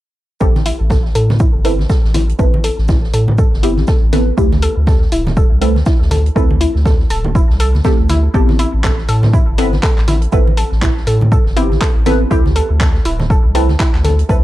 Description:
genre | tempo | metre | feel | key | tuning
deep house | 121 BPM | 4/4 | swing 59% on 16ths | A minor | A4 = 442 Hz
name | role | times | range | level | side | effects
warbly dusty pluck | arpeggios | 0.4-14.4 s | E4 to A4 | -21 LUFS | right 1 dB | chorus, sidechain pumping, analog delay
filtered dub chord stab | stabs | 0.4-14.4 s | A3 to B4 | -20 LUFS | equal | phaser, wide subtle chorus, sidechain pumping, tape echo
round analog bass | bass | 0.4-14.4 s | D1 to A2 | -15 LUFS | equal | tube saturation, sidechain pumping
electronic kick drum | drums | 0.4-14.4 s | none | -14 LUFS | equal | vintage 12-bit sampler grit
open jazz drum kit | drums | 0.4-14.4 s | hi-hat, shaker, snare drum | -34 LUFS | right 2 dB | sidechain pumping on hats, high-pass filter on hats, vintage 12-bit sampler grit, high-pass filter on snare, sidechain pumping on perc, high-pass filter on perc, high-pass filter on room
congas | percussion | 0.6-14.2 s | none | -22 LUFS | right 2 dB | none
deep house drum kit | drums | 0.7-14.2 s | handclaps, hi-hat | -24 LUFS | left 1 dB | vintage 12-bit sampler grit
room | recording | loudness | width
studio ambience | none | -11 LUFS | side -15 dB against mid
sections
0.4-14.4 A section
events
none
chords
0.4 Am7; 4.4 D9sus4; 8.3 Am7; 12.3 D9sus4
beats
| 0.41 0.91 1.40 1.90 | 2.39 2.89 3.38 3.88 | 4.38 4.87 5.37 5.86 | 6.36 6.86 7.35 7.85 | 8.34 8.84 9.34 9.83 | 10.33 10.82 11.32 11.81 | 12.31 12.81 13.30 13.80 | 14.29

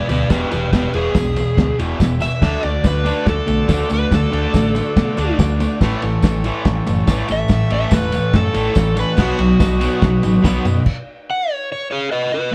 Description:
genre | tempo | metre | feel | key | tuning
garage rock duo or trio | 142 BPM | 4/4 | straight | unclear | A4 = 440 Hz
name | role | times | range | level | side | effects
overdriven slide guitar | melody | 0.0-12.5 s | F#4 to F#5 | -24 LUFS | equal | none
overdriven combo organ | sustained chords | 0.0-12.5 s | D#4 to E5 | -33 LUFS | equal | none
fuzz guitar | riff | 0.0-12.5 s | E2 to D4 | -21 LUFS | equal | distortion
picked electric bass | bass | 0.1-10.8 s | E1 to B2 | -24 LUFS | equal | none
cloth-damped thuddy drum kit | drums | 0.1-11.0 s | crash cymbal, kick drum, ride cymbal, snare drum | -22 LUFS | equal | none
tambourine | percussion | 0.1-10.8 s | none | -42 LUFS | equal | none
room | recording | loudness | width
moderate studio ambience, RT60 0.5 s | band playing live in one room, cassette tape | -17 LUFS | mono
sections
0.0-12.5 A section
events
electric slide guitar solo 0.0-12.5; stop 10.9-12.5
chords
0.0 E; 2.4 D; 5.8 A; 9.2 B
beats
0.30 | 0.73 1.15 1.58 2.00 | 2.42 2.85 3.27 3.69 | 4.12 4.54 4.96 5.39 | 5.81 6.24 6.66 7.08 | 7.50 7.92 8.35 8.77 | 9.19 9.61 10.03 10.45 | 10.86 11.28 11.70 12.12 | 12.53

